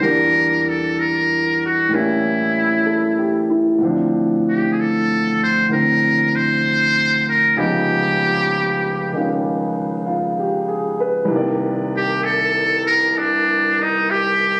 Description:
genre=jazz ballad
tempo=64 BPM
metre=4/4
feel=swing 69% on 8ths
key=unclear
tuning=A4 = 441 Hz
part: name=trumpet with metal mute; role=melody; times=0.0-14.6 s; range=D4 to C5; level=-19 LUFS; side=equal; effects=none
part: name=warm concert grand piano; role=accompaniment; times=0.0-14.6 s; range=C2 to D5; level=-21 LUFS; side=equal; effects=none
room=moderate large studio reverb, RT60 1.4 s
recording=recorded on a phone in the room, club reverb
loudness=-18 LUFS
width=mono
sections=0.0-14.6 A section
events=none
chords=0.0 Em7b5; 1.9 A7b9; 3.8 Dm7; 7.5 Db9; 11.3 Cm9

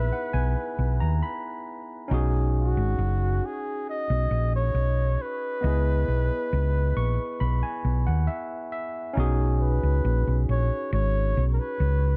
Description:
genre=lovers rock reggae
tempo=68 BPM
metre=4/4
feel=straight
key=B major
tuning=A4 = 439 Hz
part: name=mellow flugelhorn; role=melody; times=0.0-12.2 s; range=F#4 to D#5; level=-33 LUFS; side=equal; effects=tape echo
part: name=barky tine electric piano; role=accompaniment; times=0.0-12.2 s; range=B3 to C#6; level=-35 LUFS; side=equal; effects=overdrive
part: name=hollow-body short-scale fingered electric bass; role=bass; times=0.0-12.2 s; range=F#1 to D#2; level=-25 LUFS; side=equal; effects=none
room=light reverb, small room ambience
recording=dark, warm production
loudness=-26 LUFS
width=mono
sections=0.0-9.2 A section; 9.2-12.2 B section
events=tine electric piano fill 0.0-2.1, 6.5-9.2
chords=0.0 C#m7 (rootless); 2.1 B69; 5.6 C#m7; 9.2 B69

